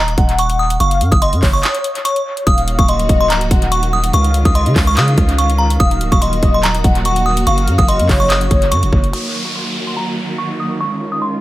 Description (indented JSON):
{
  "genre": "hip hop, trap",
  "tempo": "144 BPM",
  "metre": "4/4",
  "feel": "half-time",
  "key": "Eb dorian",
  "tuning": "A4 = 440 Hz",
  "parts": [
    { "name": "delicate synth tine bell", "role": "melody", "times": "0.0-11.4 s", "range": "Bb5 to Eb6", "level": "-20 LUFS", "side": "right 1 dB", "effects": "chorus, low-pass filter, dub echo" },
    { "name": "warm velvety synth lead", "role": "second line", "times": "0.0-9.1 s", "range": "Db5 to Gb5", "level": "-20 LUFS", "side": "left 2 dB", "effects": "chorus, dub echo" },
    { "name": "long sustained 808-style bass", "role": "bass", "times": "0.0-9.1 s", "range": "Db1 to Db3", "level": "-16 LUFS", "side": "equal", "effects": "none" },
    { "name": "trap drum kit", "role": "drums", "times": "0.1-9.2 s", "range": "handclaps, hi-hat, kick drum", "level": "-16 LUFS", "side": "equal", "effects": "dub echo" },
    { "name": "clear symphonic string section", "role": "sustained chords", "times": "2.5-11.4 s", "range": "Db3 to Gb4", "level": "-23 LUFS", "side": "right 2 dB", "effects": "low-pass filter" },
    { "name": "downlifter", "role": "sound effects", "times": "9.1-11.4 s", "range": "none", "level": "-24 LUFS", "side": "equal", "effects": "none" }
  ],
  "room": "little or no reverb",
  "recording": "echo-heavy mix",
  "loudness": "-12 LUFS",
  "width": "side -16 dB against mid",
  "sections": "0.0-9.1 A section; 9.1-11.4 B section",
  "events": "break 1.6-2.5",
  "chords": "0.0 Ebm; 0.8 Gb5; 2.5 Ebm; 4.1 Dbadd9; 5.8 Ebm; 7.5 Gb; 9.1 Ebm; 10.8 Dbadd9"
}